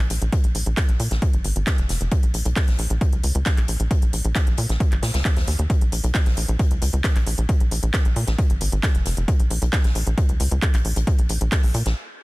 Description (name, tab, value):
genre	driving peak-time techno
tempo	134 BPM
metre	4/4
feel	straight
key	Bb minor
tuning	A4 = 440 Hz
part	tight sequencer bass	bass	0.0-11.9 s	F1 to Bb2	-22 LUFS	equal	sidechain pumping
part	swinging big-band drum kit	drums	0.1-12.0 s	hi-hat, snare drum	-36 LUFS	left 2 dB	sidechain pumping on hats, high-pass filter on hats, small room ambience, high-pass filter on snare, high-pass filter on room
part	techno drum kit	drums	0.1-11.9 s	handclaps, hi-hat	-29 LUFS	equal	sidechain pumping on hats, small room ambience
part	electronic kick drum	drums	0.3-11.6 s	none	-20 LUFS	equal	small room ambience
room	studio ambience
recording	dense, heavily limited modern master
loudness	-18 LUFS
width	side -21 dB against mid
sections	0.0-12.2 A section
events	stop 12.0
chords	none